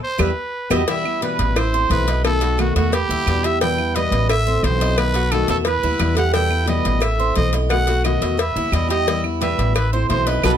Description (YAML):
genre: latin, Cuban son and guajira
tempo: 176 BPM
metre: 4/4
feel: straight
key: E harmonic minor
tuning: A4 = 438 Hz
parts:
  - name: growling trumpet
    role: melody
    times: 0.0-10.5 s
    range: F#4 to G5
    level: -23 LUFS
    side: equal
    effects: none
  - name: picked steel-string acoustic guitar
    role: accompaniment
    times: 0.2-10.5 s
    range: B2 to F#4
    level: -25 LUFS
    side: left 7 dB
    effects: none
  - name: Cuban tres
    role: arpeggios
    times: 0.2-10.6 s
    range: E4 to E5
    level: -25 LUFS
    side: right 7 dB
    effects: none
  - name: upright bass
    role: bass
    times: 0.2-10.6 s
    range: A1 to E2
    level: -21 LUFS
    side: equal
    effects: none
  - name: claves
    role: percussion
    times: 0.2-10.5 s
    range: none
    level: -28 LUFS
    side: right 10 dB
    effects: none
  - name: cowbell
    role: percussion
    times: 0.2-10.5 s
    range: none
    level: -26 LUFS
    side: left 4 dB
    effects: none
  - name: nylon-string guitar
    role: second line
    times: 0.7-10.6 s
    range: A3 to B4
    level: -28 LUFS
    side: right 5 dB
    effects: none
room: light reverb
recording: close, detailed microphones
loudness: -16 LUFS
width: side -9 dB against mid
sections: 0.9-10.6 A section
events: drum fill 0.0-0.9; band accent 0.0-0.9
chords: 0.2 Em; 1.6 Am; 2.2 B7; 2.9 Em; 4.3 Am; 5.0 B7; 5.7 Em; 7.0 Am; 7.7 B7; 8.4 Em; 9.8 Am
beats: 0.19 0.53 | 0.88 1.22 1.56 1.90 | 2.24 2.58 2.93 3.27 | 3.61 3.95 4.29 4.64 | 4.98 5.32 5.66 6.00 | 6.34 6.69 7.03 7.37 | 7.71 8.05 8.39 8.73 | 9.08 9.42 9.76 10.10 | 10.44